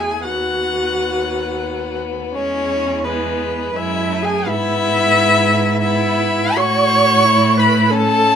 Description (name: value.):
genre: classical, slow romantic movement for string quartet.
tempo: 85 BPM.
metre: 3/4.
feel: uneven beats, rubato.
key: E major.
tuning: A4 = 440 Hz.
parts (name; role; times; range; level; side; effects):
rich violin; melody; 0.0-8.4 s; G#3 to F#4; -23 LUFS; left 10 dB; none.
warm violin; second line; 0.0-8.4 s; B4 to C#6; -18 LUFS; left 2 dB; none.
rich viola; accompaniment; 0.0-8.4 s; B3 to C#5; -20 LUFS; right 3 dB; none.
rich cello; bass; 0.0-8.4 s; D#2 to A2; -21 LUFS; right 3 dB; none.
room: moderate large studio reverb, RT60 1.5 s.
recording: minimal, uncompressed stereo recording.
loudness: -14 LUFS.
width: side -8 dB against mid.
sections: 0.0-8.4 A section.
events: none.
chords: 0.2 B/D#; 2.4 E; 4.5 E/G#; 6.6 A.